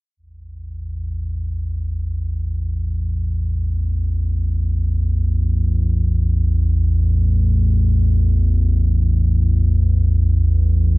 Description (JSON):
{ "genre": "ambient", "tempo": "free time", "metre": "none", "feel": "none", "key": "unclear", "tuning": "A4 = 440 Hz", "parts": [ { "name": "deep rumbling drone", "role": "solo", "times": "0.5-11.0 s", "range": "A1 to E2", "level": "-16 LUFS", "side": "equal", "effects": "built-in reverb" } ], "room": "little or no reverb", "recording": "none", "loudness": "-16 LUFS", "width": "side -23 dB against mid", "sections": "0.2-11.0 A section", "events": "none", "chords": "0.2 A5" }